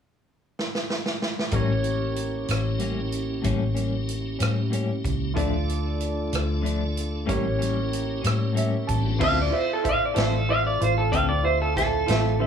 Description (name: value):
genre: slow blues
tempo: 62 BPM (dotted quarters)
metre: 12/8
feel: straight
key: D minor from 9.2 s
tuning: A4 = 435 Hz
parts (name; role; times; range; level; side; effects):
- swinging big-band drum kit; drums; 0.6-12.2 s; crash cymbal, hi-hat, kick drum, rim click, snare drum; -29 LUFS; equal; none
- clean electric guitar; accompaniment; 1.5-12.5 s; A2 to A4; -29 LUFS; left 6 dB; tremolo
- clear upright piano; accompaniment; 1.5-12.5 s; F4 to A5; -30 LUFS; right 4 dB; none
- tonewheel organ; sustained chords; 1.5-12.5 s; G3 to C5; -32 LUFS; right 2 dB; chorus vibrato, slow rotary speaker
- vintage muted fingered electric bass; bass; 1.5-12.5 s; A1 to A2; -26 LUFS; left 1 dB; none
- electric guitar through a small old amp; melody; 9.2-12.5 s; A4 to F5; -24 LUFS; right 1 dB; plate reverb
room: light reverb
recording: none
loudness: -22 LUFS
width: side -7 dB against mid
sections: 0.0-1.5 A section; 1.5-9.2 B section; 9.2-12.5 C section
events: drum fill 0.6-1.5; upright piano fill 8.2-9.2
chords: 0.0 N.C.; 1.5 A7b9; 5.4 Dm; 7.3 A7b9; 9.2 Dm7